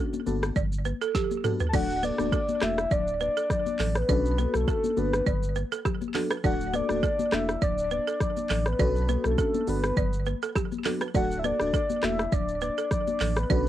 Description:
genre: afrobeats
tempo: 102 BPM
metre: 4/4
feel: swing 55% on 16ths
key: D major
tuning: A4 = 442 Hz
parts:
  - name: crystalline FM electric piano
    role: accompaniment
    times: 0.0-13.7 s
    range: A3 to A4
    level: -31 LUFS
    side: equal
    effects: chorus, phaser, cassette tape
  - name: balafon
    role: riff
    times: 0.0-13.6 s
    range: G4 to D5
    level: -33 LUFS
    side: right 10 dB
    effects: cassette tape, tape echo
  - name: afro-pop drum kit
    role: drums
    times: 0.1-13.7 s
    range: crash cymbal, handclaps, hi-hat, kick drum, rim click, shaker, snare drum, toms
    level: -29 LUFS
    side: equal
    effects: cassette tape
  - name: congas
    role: percussion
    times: 0.1-13.7 s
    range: none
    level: -34 LUFS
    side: left 9 dB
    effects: none
  - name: warm sub bass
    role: bass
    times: 0.3-13.7 s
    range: D1 to B1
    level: -30 LUFS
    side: equal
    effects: none
  - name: soft octave-layered synth lead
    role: melody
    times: 1.7-13.7 s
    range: A4 to A5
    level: -29 LUFS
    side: left 1 dB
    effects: chorus, cassette tape, tape echo
room: little or no reverb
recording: home recording on cassette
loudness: -24 LUFS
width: side -12 dB against mid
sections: 0.0-1.7 A section; 1.7-13.7 B section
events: drum fill 1.1-1.7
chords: 0.3 Gmaj7; 1.7 D; 4.1 Bm7; 5.0 Gmaj7; 6.4 D; 8.8 Bm7; 9.7 Gmaj7; 11.1 D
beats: 0.56 1.15 | 1.74 2.32 2.91 3.50 | 4.09 4.68 5.26 5.85 | 6.44 7.03 7.62 8.21 | 8.79 9.38 9.97 10.56 | 11.15 11.73 12.32 12.91 | 13.50

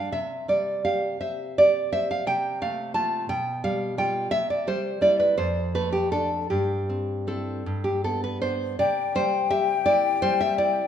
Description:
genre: romantic duo for recorder and classical guitar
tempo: 51-59 BPM (dotted quarters)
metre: 6/8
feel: rubato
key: C major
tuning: A4 = 440 Hz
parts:
  - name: nylon-string guitar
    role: accompaniment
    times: 0.0-10.9 s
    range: F2 to A5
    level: -23 LUFS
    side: right 1 dB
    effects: none
  - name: mellow hollow tenor recorder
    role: melody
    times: 8.8-10.9 s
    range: G5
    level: -23 LUFS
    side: left 10 dB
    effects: none
room: moderate scoring stage reverb, RT60 1.6 s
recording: minimal, uncompressed stereo recording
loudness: -22 LUFS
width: side -9 dB against mid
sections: 0.0-8.8 A section; 8.8-10.9 A section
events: none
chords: 0.1 C5; 2.3 F/C; 3.3 G7/B; 4.3 C; 5.4 Dm/F; 6.5 C/G; 7.6 G; 8.8 C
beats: | 0.12 1.21 | 2.27 3.30 | 4.32 5.37 | 6.49 7.65 | 8.79 9.87

